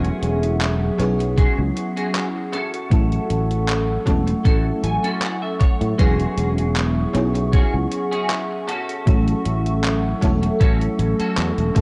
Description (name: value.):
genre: vaporwave.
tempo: 78 BPM.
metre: 4/4.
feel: swing 54% on 16ths.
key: unclear.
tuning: A4 = 440 Hz.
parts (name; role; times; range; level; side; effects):
FM electric piano with soft pad layer; accompaniment; 0.0-11.8 s; F#3 to A4; -26 LUFS; equal; phaser, subtle chorus, analog delay.
warbly tape-like pad; sustained chords; 0.0-11.8 s; G#4 to C#6; -32 LUFS; equal; chorus, built-in reverb.
clean electric guitar; riff; 0.0-11.8 s; C#4 to G#5; -31 LUFS; equal; ensemble chorus, analog delay.
sustaining fretless electric bass; bass; 0.0-11.8 s; E1 to A2; -24 LUFS; equal; subtle chorus.
detuned 8-bit digital drum machine; drums; 0.0-11.8 s; handclaps, hi-hat; -31 LUFS; equal; studio reverb, analog delay.
electronic kick drum; drums; 1.4-11.8 s; none; -20 LUFS; equal; studio reverb.
room: light reverb, digital ambience.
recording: echo-heavy mix, cassette tape.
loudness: -20 LUFS.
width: mono.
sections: 0.0-11.8 A section.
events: clean electric guitar fill 4.5-6.0.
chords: 0.0 E69; 2.5 A6; 6.0 E69; 8.7 A6.